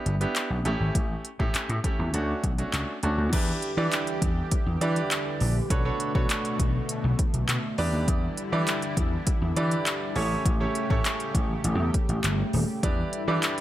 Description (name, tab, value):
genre	dance-pop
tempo	101 BPM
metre	4/4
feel	straight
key	E dorian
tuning	A4 = 440 Hz
part	bright concert grand piano	accompaniment	0.0-13.6 s	A3 to D5	-30 LUFS	right 2 dB	sidechain pumping
part	vintage slap bass	bass	0.1-13.4 s	D#1 to E3	-27 LUFS	equal	sidechain pumping
part	deep house drum kit	drums	0.1-13.6 s	crash cymbal, handclaps, hi-hat, kick drum	-27 LUFS	equal	none
part	chorused pulse-width pad	sustained chords	3.3-13.6 s	B2 to G4	-32 LUFS	left 1 dB	sidechain pumping
room	little or no reverb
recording	none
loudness	-24 LUFS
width	side -14 dB against mid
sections	0.0-3.3 A section; 3.3-13.6 B section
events	none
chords	0.0 Em7; 0.7 A7; 2.1 Dmaj7; 3.3 Em7; 5.7 Bm9; 7.8 Em7; 10.2 A7; 12.8 Em7